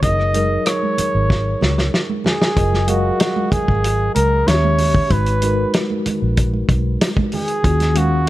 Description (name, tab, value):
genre	lush 1970s-style soul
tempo	95 BPM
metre	4/4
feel	straight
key	F# major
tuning	A4 = 440 Hz
part	warm flugelhorn	melody	0.0-8.3 s	F#4 to D#5	-20 LUFS	right 1 dB	none
part	mellow tine electric piano	accompaniment	0.0-8.3 s	D#3 to E#5	-23 LUFS	left 1 dB	medium stereo tremolo
part	vintage muted fingered electric bass	bass	0.0-8.3 s	F#1 to D#2	-18 LUFS	equal	none
part	warm soul drum kit	drums	0.0-8.3 s	hi-hat, kick drum, rim click, snare drum	-19 LUFS	equal	none
part	congas	percussion	0.0-8.1 s	none	-28 LUFS	right 6 dB	none
room	light reverb, small room reverb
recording	dark, warm production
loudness	-15 LUFS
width	side -16 dB against mid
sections	0.0-2.6 A section; 2.6-8.3 A section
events	drum fill 1.3-2.6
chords	0.0 F#69; 2.6 F#maj13; 4.5 D#7b9; 5.1 G#m7; 7.6 D#m9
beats	| 0.03 0.66 1.30 1.93 | 2.57 3.20 3.83 4.47 | 5.10 5.74 6.37 7.01 | 7.64 8.28